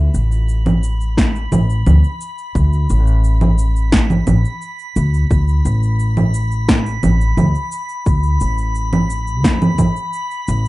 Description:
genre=sunset chillout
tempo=87 BPM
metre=4/4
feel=straight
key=unclear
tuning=A4 = 439 Hz
part: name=upright bass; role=bass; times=0.0-10.6 s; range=A1 to F2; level=-15 LUFS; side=equal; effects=tube saturation
part: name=drifting glass-harmonics texture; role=texture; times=0.1-10.7 s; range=B5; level=-27 LUFS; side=left 2 dB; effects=chorus, built-in reverb, plate reverb
part: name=electronic shaker, congas and snare drum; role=drums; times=0.1-10.7 s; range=none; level=-17 LUFS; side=right 1 dB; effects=overdrive
part: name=electronic kick drum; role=drums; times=1.2-9.9 s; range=none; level=-17 LUFS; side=equal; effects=overdrive
room=light reverb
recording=rough home demo mix, nothing above 10.7 kHz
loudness=-14 LUFS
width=side -19 dB against mid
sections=0.0-10.7 A section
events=none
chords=0.0 D5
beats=0.48 1.17 1.86 | 2.55 3.24 3.93 4.62 | 5.31 6.00 6.69 7.38 | 8.07 8.76 9.45 10.13

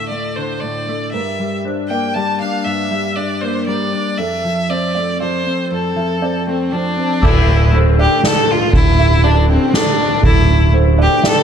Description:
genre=post-rock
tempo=118 BPM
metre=3/4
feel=straight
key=D minor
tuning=A4 = 443 Hz
part: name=bright violin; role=melody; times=0.0-11.4 s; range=C4 to A5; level=-18 LUFS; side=left 2 dB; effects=tape echo
part: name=mellow electric guitar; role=arpeggios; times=0.0-11.4 s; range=D2 to D4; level=-21 LUFS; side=left 1 dB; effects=analog chorus, tape echo
part: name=felt-muted upright piano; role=arpeggios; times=1.1-11.4 s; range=A4 to E5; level=-26 LUFS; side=right 8 dB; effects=tape echo
part: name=pedal steel guitar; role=sustained chords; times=7.2-11.4 s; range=A4 to D6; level=-30 LUFS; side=equal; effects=none
part: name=fingered electric bass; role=bass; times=7.2-11.1 s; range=D1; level=-12 LUFS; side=equal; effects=none
part: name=soft-mallet drum kit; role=drums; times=7.2-11.4 s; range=crash cymbal, kick drum, ride cymbal, snare drum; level=-16 LUFS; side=right 1 dB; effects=none
room=light reverb, small room ambience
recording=dark, warm production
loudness=-13 LUFS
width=side -8 dB against mid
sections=0.0-7.2 A section; 7.2-11.4 B section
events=none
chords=0.0 D5; 1.1 Gm; 4.2 F; 7.2 Dsus2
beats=0.10 0.61 | 1.13 1.64 2.15 | 2.66 3.17 3.68 | 4.19 4.70 5.21 | 5.71 6.22 6.73 | 7.23 7.74 8.24 | 8.74 9.24 9.74 | 10.25 10.75 11.25

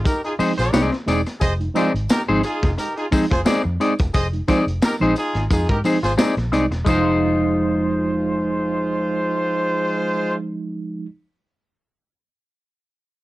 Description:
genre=funk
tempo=88 BPM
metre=4/4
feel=swing 56% on 16ths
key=F dorian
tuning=A4 = 439 Hz
part: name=clean electric guitar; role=accompaniment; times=0.0-11.1 s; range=Ab3 to D5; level=-23 LUFS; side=left 3 dB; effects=cassette tape
part: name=clear horn section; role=second line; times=0.1-10.3 s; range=Ab3 to Eb5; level=-23 LUFS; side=equal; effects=cassette tape
part: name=mellow tine electric piano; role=stabs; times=0.1-11.1 s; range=F3 to Eb4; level=-23 LUFS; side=right 3 dB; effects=medium stereo tremolo, cassette tape
part: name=crunchy breakbeat drum kit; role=drums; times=0.1-7.0 s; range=hi-hat, kick drum, snare drum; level=-22 LUFS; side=equal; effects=cassette tape
part: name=tambourine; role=percussion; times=0.1-7.2 s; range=none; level=-37 LUFS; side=left 3 dB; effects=none
part: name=vintage muted fingered electric bass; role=bass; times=0.4-11.0 s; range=E1 to Ab2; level=-24 LUFS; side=equal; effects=none
room=light reverb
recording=home recording on cassette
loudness=-18 LUFS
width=side -17 dB against mid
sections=0.0-6.9 A section; 6.9-9.6 B section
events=none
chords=0.0 Fm7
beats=0.06 0.74 | 1.42 2.10 2.78 3.46 | 4.14 4.83 5.51 6.19 | 6.87 7.55 8.23 8.91

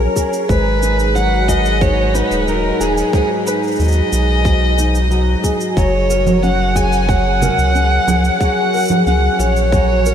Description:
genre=folktronica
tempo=91 BPM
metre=4/4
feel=straight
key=unclear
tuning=A4 = 440 Hz
part: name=dark violin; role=melody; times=0.0-10.1 s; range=G#4 to G#5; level=-18 LUFS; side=equal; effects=tape echo
part: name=fingerpicked steel-string acoustic guitar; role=arpeggios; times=0.0-10.1 s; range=G#2 to A#4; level=-18 LUFS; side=equal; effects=ensemble chorus, low-pass filter, tape echo
part: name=warm sub bass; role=bass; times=0.0-10.1 s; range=D#1 to D#2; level=-17 LUFS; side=equal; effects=none
part: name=cabasa and congas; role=drums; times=0.2-10.1 s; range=none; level=-23 LUFS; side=right 2 dB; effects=none
part: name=electronic kick drum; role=drums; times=0.2-9.9 s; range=none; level=-17 LUFS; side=equal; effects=none
room=moderate huge ambient reverb, RT60 7.6 s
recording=dreamy mix soaked in reverb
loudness=-13 LUFS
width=side -9 dB against mid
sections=0.0-10.1 A section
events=none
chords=0.5 G#m7; 5.8 F#add9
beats=| 0.49 1.15 1.81 2.47 | 3.13 3.79 4.45 5.11 | 5.77 6.43 7.09 7.75 | 8.41 9.07 9.72

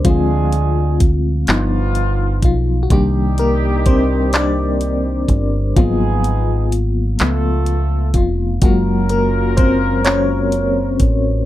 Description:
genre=slow six-eight R&B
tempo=42 BPM (dotted quarters)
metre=6/8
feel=straight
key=unclear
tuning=A4 = 442 Hz
part: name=FM electric piano with tremolo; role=accompaniment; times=0.0-11.5 s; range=Eb3 to D5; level=-18 LUFS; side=left 2 dB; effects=none
part: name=mellow horn section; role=stabs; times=0.0-11.0 s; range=F3 to Bb4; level=-24 LUFS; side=right 2 dB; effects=none
part: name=smooth R&B drum kit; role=drums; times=0.0-11.2 s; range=handclaps, hi-hat, kick drum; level=-16 LUFS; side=equal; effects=none
part: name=deep dub fingered electric bass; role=bass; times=0.1-11.4 s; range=F1 to D2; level=-18 LUFS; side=equal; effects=none
room=light reverb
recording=dark, warm production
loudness=-14 LUFS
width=side -14 dB against mid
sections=0.0-11.5 A section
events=FM electric piano solo 0.0-11.5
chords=0.1 Dm7b5; 1.5 G7b13; 2.9 Cm9; 5.8 Abm7; 7.2 Dbaug7; 8.6 Gbmaj9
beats=| 0.05 1.48 | 2.91 4.34 | 5.76 7.19 | 8.62 10.05

